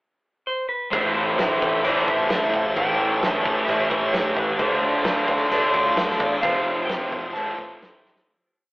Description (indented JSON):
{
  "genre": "rock, shoegaze and dream pop",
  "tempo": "131 BPM",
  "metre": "4/4",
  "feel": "straight",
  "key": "A minor",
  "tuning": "A4 = 436 Hz",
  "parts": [
    { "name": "clean electric guitar", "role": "melody", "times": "0.5-8.0 s", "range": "B4 to A5", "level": "-27 LUFS", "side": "equal", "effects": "none" },
    { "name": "icy glass pad", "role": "sustained chords", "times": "1.7-8.3 s", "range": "E4 to A5", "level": "-30 LUFS", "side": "equal", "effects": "chorus, built-in reverb, tremolo" },
    { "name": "overdriven electric guitar", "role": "riff", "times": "0.9-8.3 s", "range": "A2 to F4", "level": "-24 LUFS", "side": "equal", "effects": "none" },
    { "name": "thick fuzz guitar", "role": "riff", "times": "0.9-8.3 s", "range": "F2 to D4", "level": "-26 LUFS", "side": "equal", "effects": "distortion" },
    { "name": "vintage muted picked electric bass", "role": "bass", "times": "0.9-8.2 s", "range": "F1 to A2", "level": "-41 LUFS", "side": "equal", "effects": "none" },
    { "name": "loose indie drum kit", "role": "drums", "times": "0.9-8.3 s", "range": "crash cymbal, kick drum, snare drum", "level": "-24 LUFS", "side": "equal", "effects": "none" }
  ],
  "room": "wet stone room reverb, RT60 1.1 s",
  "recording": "rough rehearsal-room recording, telephone sound",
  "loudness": "-19 LUFS",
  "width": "side -24 dB against mid",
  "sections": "0.0-0.9 pickup bar; 0.9-8.3 A section",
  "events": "fade-out 6.4-8.3; drum fill 8.0",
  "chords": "0.0 N.C.; 0.9 Am; 2.8 A7; 4.6 Dmadd9; 6.4 F; 7.4 Am7"
}